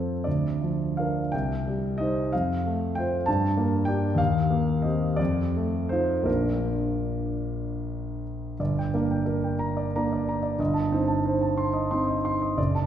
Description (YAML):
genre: classical, romantic character piece for solo piano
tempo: 50-66 BPM (dotted quarters)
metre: 6/8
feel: rubato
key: Bb major, G minor from 8.6 s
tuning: A4 = 442 Hz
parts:
  - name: warm concert grand piano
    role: solo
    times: 0.0-12.9 s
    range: F#1 to C6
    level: -24 LUFS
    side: equal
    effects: none
room: wet scoring stage reverb, RT60 1.7 s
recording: heard from further back in the room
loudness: -24 LUFS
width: side -10 dB against mid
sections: 0.0-8.6 A section; 8.6-12.9 B section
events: none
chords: 0.3 Bb/D; 1.3 Cm; 2.3 F; 3.3 Gm; 4.2 Cm7/Eb; 5.2 F7; 6.3 Bb; 8.6 Gm; 10.6 Am7b5/G